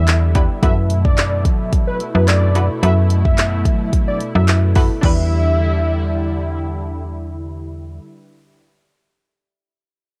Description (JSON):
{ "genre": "dance-pop", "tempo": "109 BPM", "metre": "4/4", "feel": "straight", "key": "E minor", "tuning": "A4 = 438 Hz", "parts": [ { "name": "unison lead", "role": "melody", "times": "0.0-6.6 s", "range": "B4 to E5", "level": "-26 LUFS", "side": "equal", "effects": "sidechain pumping, cassette tape, tape echo" }, { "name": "lush unison pad", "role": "sustained chords", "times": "0.0-8.0 s", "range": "B2 to E4", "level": "-28 LUFS", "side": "equal", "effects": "chorus, phaser, sidechain pumping, cassette tape" }, { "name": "slap-like FM bass", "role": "bass", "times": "0.0-8.0 s", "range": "E2 to F#3", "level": "-19 LUFS", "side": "equal", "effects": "sidechain pumping" }, { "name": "deep house drum kit", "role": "drums", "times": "0.1-5.2 s", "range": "crash cymbal, handclaps, hi-hat, kick drum", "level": "-19 LUFS", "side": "equal", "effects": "cassette tape" }, { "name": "punchy chord stab", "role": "accompaniment", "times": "0.3-8.7 s", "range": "B3 to B4", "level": "-27 LUFS", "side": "equal", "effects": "chorus, sidechain pumping, cassette tape" } ], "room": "little or no reverb", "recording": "home recording on cassette", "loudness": "-17 LUFS", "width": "mono", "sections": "0.0-5.0 A section; 5.0-7.2 B section", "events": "drop 0.0-5.0", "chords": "0.0 Em7; 0.6 B7sus4/F#; 5.0 Em7", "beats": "0.08 | 0.63 1.18 1.73 2.28 | 2.83 3.38 3.93 4.48 | 5.03 5.58 6.13 6.68" }